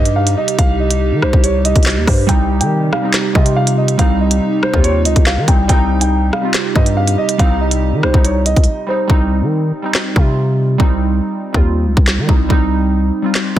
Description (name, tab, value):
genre	hip hop, drill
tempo	141 BPM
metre	4/4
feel	half-time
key	C minor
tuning	A4 = 440 Hz
part	dark concert grand piano	melody	0.0-9.0 s	C5 to G5	-20 LUFS	right 1 dB	low-pass filter, tape echo
part	warbly tape-like pad	sustained chords	0.0-9.1 s	C3 to G4	-23 LUFS	right 1 dB	chorus, built-in reverb, phaser
part	growling 808-style bass	bass	0.0-13.6 s	C2 to Eb3	-15 LUFS	equal	none
part	drill drum kit	drums	0.1-13.6 s	handclaps, hi-hat, kick drum, rim click, snare drum	-14 LUFS	equal	none
part	glassy digital keys	accompaniment	2.3-13.6 s	G3 to F4	-19 LUFS	right 2 dB	chorus, low-pass filter
room	digital ambience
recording	dense, heavily limited modern master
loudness	-12 LUFS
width	side -12 dB against mid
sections	0.0-9.1 A section; 9.1-13.6 B section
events	break 8.7-9.1; hi-hats muted 9.1-13.6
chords	0.0 Cm